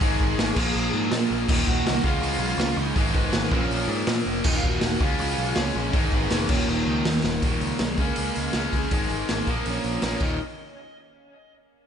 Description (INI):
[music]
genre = punk rock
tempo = 162 BPM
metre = 4/4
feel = straight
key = Eb minor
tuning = A4 = 443 Hz
[part]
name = smooth overdriven lead guitar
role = melody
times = 0.0-10.4 s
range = Ab3 to Ab5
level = -32 LUFS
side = right 2 dB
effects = slapback echo, tape echo
[part]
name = cranked stack guitar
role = riff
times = 0.0-10.4 s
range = Eb2 to Db4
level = -26 LUFS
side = equal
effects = overdrive, slapback echo
[part]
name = growling picked electric bass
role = bass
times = 0.0-10.4 s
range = Eb1 to Bb2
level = -30 LUFS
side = equal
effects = overdrive
[part]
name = raw garage drum kit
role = drums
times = 0.0-10.3 s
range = crash cymbal, hi-hat, kick drum, snare drum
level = -25 LUFS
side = equal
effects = none
[sound]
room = light reverb, small room ambience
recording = nothing above 10.8 kHz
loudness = -21 LUFS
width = side -8 dB against mid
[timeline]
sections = 0.0-7.4 A section; 7.4-10.4 B section; 10.4-11.9 C section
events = drum fill 7.2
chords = 0.0 Ab5; 0.6 Bb5; 1.5 Ebm; 2.0 Db; 3.0 Abm; 3.5 Bbm; 4.4 Ebm; 5.0 Db; 5.9 Abm; 6.5 Eb5; 8.0 Db5; 8.9 Ab5; 9.5 Bbm; 10.2 Eb5; 10.4 N.C.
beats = | 0.01 0.38 0.75 1.12 | 1.49 1.86 2.23 2.60 | 2.97 3.34 3.71 4.08 | 4.45 4.82 5.19 5.56 | 5.93 6.30 6.67 7.04 | 7.42 7.79 8.16 8.53 | 8.91 9.28 9.65 10.03